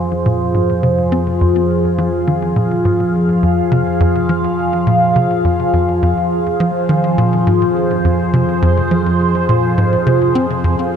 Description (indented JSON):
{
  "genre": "ambient",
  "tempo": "104 BPM",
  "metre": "4/4",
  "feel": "straight",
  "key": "F minor",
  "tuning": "A4 = 441 Hz",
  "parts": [
    { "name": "phased analog pad", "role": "sustained chords", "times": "0.0-11.0 s", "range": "F3 to F5", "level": "-15 LUFS", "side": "equal", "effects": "phaser, chorus" },
    { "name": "analog drone", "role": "bass", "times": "0.0-11.0 s", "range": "F2", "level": "-24 LUFS", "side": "equal", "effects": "chorus, phaser" },
    { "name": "tight sequencer bass", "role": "riff", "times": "0.3-10.8 s", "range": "F2 to C4", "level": "-17 LUFS", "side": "equal", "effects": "analog chorus, ping-pong delay" }
  ],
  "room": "wet huge ambient reverb, RT60 7.1 s",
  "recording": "dark, warm production",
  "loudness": "-12 LUFS",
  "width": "side -8 dB against mid",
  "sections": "0.0-11.0 A section",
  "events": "none",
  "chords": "0.0 Fm"
}